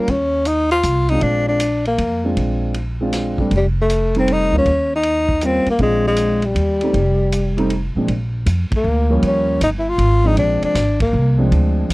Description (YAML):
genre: jazz, small-group swing and bop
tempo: 158 BPM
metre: 3/4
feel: swing 66% on 8ths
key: Bb mixolydian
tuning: A4 = 440 Hz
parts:
  - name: breathy tenor saxophone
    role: melody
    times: 0.0-11.5 s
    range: G3 to F4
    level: -17 LUFS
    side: left 1 dB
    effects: none
  - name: warm concert grand piano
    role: accompaniment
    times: 0.0-11.9 s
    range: Bb2 to F4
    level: -21 LUFS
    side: right 1 dB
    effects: none
  - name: upright bass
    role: bass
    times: 0.1-11.9 s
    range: F1 to F2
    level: -19 LUFS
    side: equal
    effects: none
  - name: vintage drum kit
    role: drums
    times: 0.1-11.9 s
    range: hi-hat, kick drum, ride cymbal, snare drum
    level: -28 LUFS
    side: equal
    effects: none
room: little or no reverb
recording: dry, close 1970s-style studio recording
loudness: -15 LUFS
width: side -21 dB against mid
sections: 0.0-8.1 A section; 8.1-11.9 A section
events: band accent 8.7, 10.9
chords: 0.0 Eb7(no3); 1.2 Bb7; 3.5 F7; 4.7 Eb7; 5.8 Bb7; 6.6 Eb; 6.9 F5; 8.1 Bb; 9.2 Eb7; 10.4 Bb7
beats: | 0.09 0.47 0.85 | 1.23 1.61 1.99 | 2.37 2.75 3.13 | 3.52 3.90 4.28 | 4.66 5.04 5.42 | 5.80 6.18 6.57 | 6.95 7.33 7.71 | 8.09 8.47 8.85 | 9.23 9.62 10.00 | 10.38 10.76 11.14 | 11.52 11.90